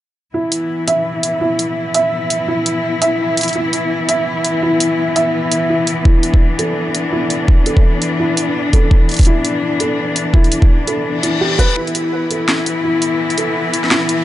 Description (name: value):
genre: half-time drum and bass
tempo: 168 BPM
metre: 4/4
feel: swing 59% on 16ths, half-time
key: unclear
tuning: A4 = 440 Hz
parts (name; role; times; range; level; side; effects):
- warm studio cello section; sustained chords; 0.3-14.2 s; E3 to E4; -18 LUFS; left 3 dB; sidechain pumping
- felt-muted upright piano; arpeggios; 0.3-14.2 s; E4 to E5; -18 LUFS; right 1 dB; low-pass filter, digital delay
- drum and bass drum kit; drums; 0.5-14.2 s; hi-hat, snare drum; -18 LUFS; equal; overdrive
- electronic kick drum; drums; 6.1-11.7 s; none; -11 LUFS; equal; overdrive
- reverse cymbal and riser; sound effects; 11.2-14.2 s; none; -25 LUFS; left 5 dB; none
room: light reverb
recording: nothing above 10.8 kHz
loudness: -13 LUFS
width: side -14 dB against mid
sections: 0.3-11.8 A section; 11.8-14.2 B section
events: reverse cymbal 11.2-11.8; build-up 11.8-14.2; riser 11.8-14.2; filter sweep on felt piano 11.8-14.2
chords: 0.3 E5